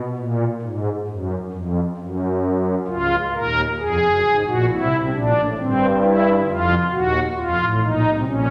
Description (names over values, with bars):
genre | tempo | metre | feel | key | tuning
classical, baroque-style 4-part fugue for pipe organ | 66 BPM | 4/4 | straight | unclear | A4 = 439 Hz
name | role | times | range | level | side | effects
pipe organ, strings celeste | solo | 0.2-8.5 s | Db1 to Bb4 | -20 LUFS | equal | none
room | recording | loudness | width
wet recital hall reverb, RT60 1.3 s | none | -20 LUFS | mono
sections
0.0-8.5 A section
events
none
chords
0.0 N.C.; 2.9 Bbm/Db; 4.7 C7; 6.5 F7